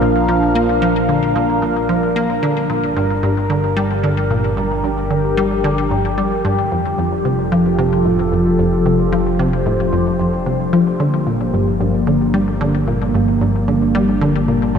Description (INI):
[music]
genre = ambient, sequencer-driven space music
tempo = 112 BPM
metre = 4/4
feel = straight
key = G minor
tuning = A4 = 442 Hz
[part]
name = phased analog pad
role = sustained chords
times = 0.0-14.8 s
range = Bb2 to F5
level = -18 LUFS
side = equal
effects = phaser, chorus
[part]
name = concert harp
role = arpeggios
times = 0.0-14.8 s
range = D3 to G4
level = -25 LUFS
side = moving between left 8 dB and equal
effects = auto-pan, ping-pong delay
[part]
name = resonant blip pluck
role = riff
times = 0.0-14.8 s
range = F2 to Bb3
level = -18 LUFS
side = equal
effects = chorus, ping-pong delay
[part]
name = fat analog bass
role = bass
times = 0.0-14.8 s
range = F1 to Bb1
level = -24 LUFS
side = equal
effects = none
[sound]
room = wet huge ambient reverb, RT60 7.5 s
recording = dark, warm production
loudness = -14 LUFS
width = side -7 dB against mid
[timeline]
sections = 0.0-14.8 A section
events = fade-in on harp 0.0-14.8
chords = 0.0 Bb; 2.4 Gm; 6.7 Fadd9; 11.0 Gm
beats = | 0.29 0.82 1.36 1.89 | 2.43 2.96 3.50 4.04 | 4.57 5.11 5.64 6.18 | 6.71 7.25 7.79 8.32 | 8.86 9.39 9.93 10.46 | 11.00 11.54 12.07 12.61 | 13.14 13.68 14.21 14.75